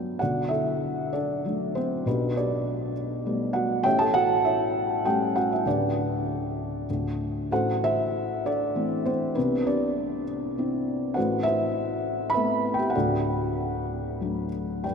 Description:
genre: classical, lyrical solo piano.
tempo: 99 BPM.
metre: 3/4.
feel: rubato.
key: unclear.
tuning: A4 = 437 Hz.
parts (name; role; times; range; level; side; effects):
felt-muted upright piano; solo; 0.0-14.9 s; D1 to B5; -24 LUFS; equal; none.
room: wet cathedral reverb, RT60 5.4 s.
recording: in a vast, echoing space.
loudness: -24 LUFS.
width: side -6 dB against mid.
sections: 0.2-14.8 A section.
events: none.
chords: 0.2 Bm7; 2.1 Gadd9/B; 3.9 A7; 5.7 G/D; 6.9 N.C.; 7.5 Am; 9.4 Cadd9; 11.2 Amadd9; 13.0 D.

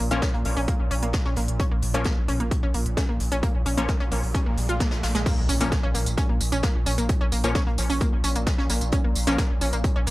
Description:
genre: driving peak-time techno.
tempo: 131 BPM.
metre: 4/4.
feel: straight.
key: Bb minor.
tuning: A4 = 440 Hz.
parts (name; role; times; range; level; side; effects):
analog pluck; riff; 0.0-10.1 s; Ab3 to F4; -29 LUFS; equal; chorus, overdrive, sidechain pumping, tape echo.
saturated sub bass; bass; 0.0-10.1 s; Bb1; -27 LUFS; equal; overdrive, sidechain pumping, low-pass filter.
swarming drone; drone; 0.0-10.1 s; Bb2; -33 LUFS; right 1 dB; built-in reverb, sidechain pumping.
rave stab; stabs; 0.1-9.4 s; F3 to Db4; -29 LUFS; left 2 dB; chorus, built-in reverb, cassette tape, sidechain pumping, tape echo.
techno drum kit; drums; 0.1-10.1 s; crash cymbal, hi-hat, tambourine; -32 LUFS; right 1 dB; overdrive.
electronic kick drum; drums; 0.2-9.9 s; none; -25 LUFS; equal; overdrive.
soft brush drum kit; drums; 0.2-10.1 s; hi-hat, snare drum; -36 LUFS; left 1 dB; sidechain pumping on hats, high-pass filter on hats, high-pass filter on snare, high-pass filter on room.
riser and impact; sound effects; 3.6-7.1 s; none; -38 LUFS; equal; none.
room: digital ambience.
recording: none.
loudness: -21 LUFS.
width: side -19 dB against mid.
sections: 0.0-5.3 A section; 5.3-10.1 B section.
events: drop 5.3-10.1; impact 5.3-7.1.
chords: 0.0 Bbm.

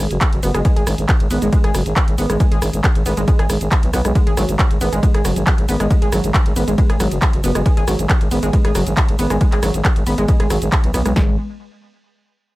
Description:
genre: driving peak-time techno.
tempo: 137 BPM.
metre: 4/4.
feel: straight.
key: G# minor.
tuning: A4 = 439 Hz.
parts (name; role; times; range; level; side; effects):
growling FM bass; bass; 0.0-11.4 s; F#1 to B1; -19 LUFS; equal; sidechain pumping.
punchy analog drum machine; drums; 0.1-11.1 s; handclaps, hi-hat, ride cymbal, rim click, shaker; -23 LUFS; right 1 dB; sidechain pumping on hats, sidechain pumping on perc, sidechain pumping on cymbals.
techno drum kit; drums; 0.2-11.3 s; kick drum, snare drum; -16 LUFS; equal; none.
analog pluck; riff; 0.4-11.4 s; F#3 to G#4; -23 LUFS; equal; chorus, overdrive, sidechain pumping, tape echo.
room: digital ambience.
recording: none.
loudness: -14 LUFS.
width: side -19 dB against mid.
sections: 0.0-11.2 A section; 11.2-12.6 B section.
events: drop 0.0-11.2.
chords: 0.0 G#m; 11.2 N.C..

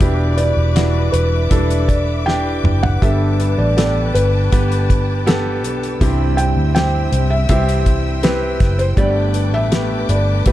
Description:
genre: pop ballad.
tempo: 80 BPM.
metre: 4/4.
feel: straight.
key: G major.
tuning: A4 = 439 Hz.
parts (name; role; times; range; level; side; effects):
felt-muted upright piano; melody; 0.0-10.5 s; B4 to G5; -22 LUFS; equal; none.
clear baby grand piano; accompaniment; 0.0-10.5 s; G2 to B4; -22 LUFS; right 1 dB; none.
warm studio string section; sustained chords; 0.0-10.5 s; C4 to E6; -28 LUFS; left 2 dB; none.
fingerpicked steel-string acoustic guitar; arpeggios; 0.0-10.5 s; C3 to C5; -25 LUFS; left 2 dB; digital delay.
vintage muted fingered electric bass; bass; 0.0-10.5 s; E1 to D2; -17 LUFS; equal; none.
damped 70s drum kit; drums; 0.0-10.5 s; hi-hat, kick drum, snare drum, toms; -18 LUFS; equal; none.
room: light reverb, studio ambience.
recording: dark, warm production.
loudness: -14 LUFS.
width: side -14 dB against mid.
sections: 0.0-10.5 A section.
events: drum fill 2.3-3.0.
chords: 0.0 Em7; 3.0 Gadd9; 6.0 C; 9.0 Gadd9.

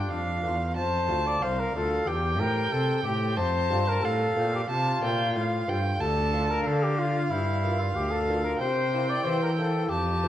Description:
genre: classical, baroque-style sonata movement with continuo.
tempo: 92 BPM.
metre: 4/4.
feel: rubato.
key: unclear.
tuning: A4 = 440 Hz.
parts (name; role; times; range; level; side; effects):
warm trumpet; melody; 0.0-10.3 s; D4 to D5; -28 LUFS; left 4 dB; none.
warm violin; second line; 0.0-10.3 s; F5 to A5; -31 LUFS; right 3 dB; none.
lute; accompaniment; 0.0-10.3 s; D2 to G4; -33 LUFS; right 1 dB; none.
warm cello; bass; 0.0-10.3 s; C2 to E3; -29 LUFS; right 1 dB; none.
room: moderate recital hall reverb, RT60 1.3 s.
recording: worn, warbling old tape, cassette tape, warbly pitch drift.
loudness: -24 LUFS.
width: side -12 dB against mid.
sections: 0.0-10.3 A section.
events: none.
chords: 0.0 Dm; 0.8 F; 2.1 C/E; 3.4 F; 6.0 Dm; 7.3 Gm7; 8.6 C7.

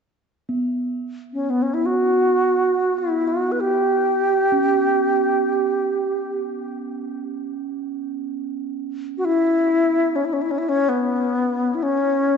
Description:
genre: world meditative, free-time meditation music.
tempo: free time.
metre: none.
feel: none.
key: unclear.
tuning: A4 = 441 Hz.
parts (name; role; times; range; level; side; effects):
bronze singing bowl; texture; 0.5-11.8 s; B3 to C#4; -28 LUFS; right 4 dB; none.
alto flute; melody; 1.3-12.4 s; B3 to B4; -18 LUFS; equal; ping-pong delay.
room: wet scoring stage reverb, RT60 1.7 s, small room ambience.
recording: dark, warm production, nothing above 7.9 kHz.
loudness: -19 LUFS.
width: side -6 dB against mid.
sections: 0.1-12.4 A section.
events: none.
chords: none.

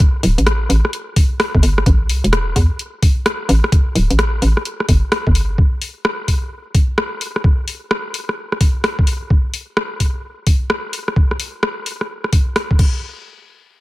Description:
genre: UK garage, two-step garage.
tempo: 129 BPM.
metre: 4/4.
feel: swing 64% on 16ths.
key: unclear.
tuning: A4 = 439 Hz.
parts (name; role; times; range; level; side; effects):
electronic kick drum; drums; 0.0-12.9 s; none; -14 LUFS; equal; none.
garage drum kit; drums; 0.0-12.9 s; crash cymbal, hi-hat, rim click; -20 LUFS; equal; none.
hollow knocking FM bass; bass; 0.2-5.6 s; D1 to E2; -14 LUFS; equal; none.
room: light reverb.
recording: none.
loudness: -15 LUFS.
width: side -18 dB against mid.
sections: 0.0-13.0 A section.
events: none.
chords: none.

